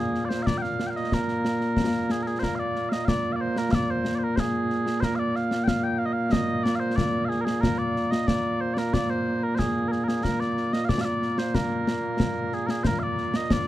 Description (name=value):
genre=scottish traditional, Scottish pipe music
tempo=92 BPM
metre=2/4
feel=straight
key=Bb mixolydian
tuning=A4 = 440 Hz
part: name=mellow small bagpipes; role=melody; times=0.0-13.7 s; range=Bb2 to G5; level=-25 LUFS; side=equal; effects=none
part: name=concert snare drum and concert bass drum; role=drums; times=0.1-13.7 s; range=none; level=-28 LUFS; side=left 1 dB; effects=none
room=light reverb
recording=dark, warm production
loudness=-23 LUFS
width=side -14 dB against mid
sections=0.0-2.4 A section; 2.4-12.9 B section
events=none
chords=none